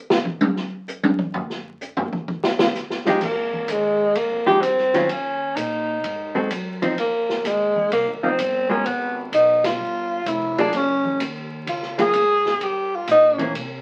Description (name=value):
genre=jazz, small-group swing and bop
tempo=128 BPM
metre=4/4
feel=swing 68% on 8ths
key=F minor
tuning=A4 = 437 Hz
part: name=open jazz drum kit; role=drums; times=0.1-13.7 s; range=crash cymbal, hi-hat, kick drum, ride cymbal, snare drum, toms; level=-28 LUFS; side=equal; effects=none
part: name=hollow-body jazz guitar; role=accompaniment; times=3.1-13.5 s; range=Eb3 to Bb4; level=-24 LUFS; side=equal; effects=none
part: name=breathy tenor saxophone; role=melody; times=3.2-13.5 s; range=Ab3 to Ab4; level=-21 LUFS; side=equal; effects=none
part: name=upright bass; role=bass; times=3.2-13.8 s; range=F1 to C3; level=-38 LUFS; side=equal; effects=none
part: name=breathy alto saxophone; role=second line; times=4.5-9.2 s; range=Bb3 to G4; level=-24 LUFS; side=equal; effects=none
room=wet studio ambience, RT60 0.5 s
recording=very old 78 rpm record, vinyl crackle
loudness=-21 LUFS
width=mono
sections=0.0-3.2 A section; 3.2-13.8 B section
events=drum solo 0.0-3.2; band accent 9.6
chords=0.0 N.C.; 2.3 Fm9; 5.1 Eb5; 6.0 Ab7b9; 7.0 Fm11; 8.8 Abm; 9.8 Fmadd9; 10.7 Gbsus2; 12.6 Gdim